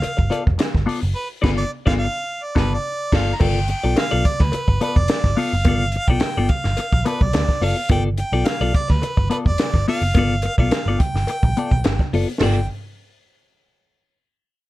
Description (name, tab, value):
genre	funk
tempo	107 BPM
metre	4/4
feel	straight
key	G mixolydian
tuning	A4 = 440 Hz
part	clear harmonica	melody	0.0-12.7 s	B4 to Bb5	-25 LUFS	right 1 dB	none
part	clean electric guitar	accompaniment	0.0-12.6 s	B3 to D5	-23 LUFS	left 4 dB	phaser
part	vintage muted picked electric bass	bass	0.0-12.7 s	F1 to D2	-21 LUFS	equal	none
part	compact cocktail drum kit	drums	0.0-12.5 s	crash cymbal, hi-hat, kick drum, snare drum, toms	-20 LUFS	equal	none
part	cowbell	percussion	0.0-12.7 s	none	-32 LUFS	left 3 dB	none
room	little or no reverb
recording	dark, warm production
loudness	-17 LUFS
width	side -17 dB against mid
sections	0.0-3.4 A section; 3.4-12.4 B section; 12.4-14.7 C section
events	harmonica solo 0.0-3.4; band accent 1.2-3.4; silent gap 2.8-3.4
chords	0.0 G9